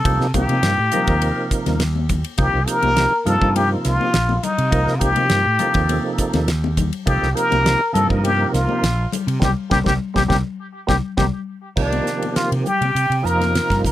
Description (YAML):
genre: electric jazz fusion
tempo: 102 BPM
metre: 4/4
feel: straight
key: C dorian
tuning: A4 = 440 Hz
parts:
  - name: trumpet with plunger mute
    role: melody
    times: 0.0-13.9 s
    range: D4 to Bb4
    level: -20 LUFS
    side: left 2 dB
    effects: none
  - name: percussive tonewheel organ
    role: accompaniment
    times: 0.0-13.9 s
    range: C3 to Bb4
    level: -23 LUFS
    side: right 3 dB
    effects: slow rotary speaker, overdrive, chorus vibrato
  - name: fretless electric bass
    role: bass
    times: 0.1-13.9 s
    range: Bb1 to C3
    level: -21 LUFS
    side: equal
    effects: none
  - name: damped 70s drum kit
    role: drums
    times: 0.1-13.9 s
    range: crash cymbal, hi-hat, kick drum, ride cymbal, snare drum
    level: -24 LUFS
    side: equal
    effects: none
  - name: congas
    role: percussion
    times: 0.4-13.9 s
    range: none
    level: -27 LUFS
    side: left 7 dB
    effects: none
  - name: breathy silver concert flute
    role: second line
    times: 11.8-13.9 s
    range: D5 to Bb5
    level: -26 LUFS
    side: right 5 dB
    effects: none
room: little or no reverb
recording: none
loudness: -16 LUFS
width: side -13 dB against mid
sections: 0.0-11.8 A section; 11.8-13.9 B section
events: drum fill 9.4-11.8; band accent 9.4-11.8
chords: 0.0 Cm7; 11.8 Cm9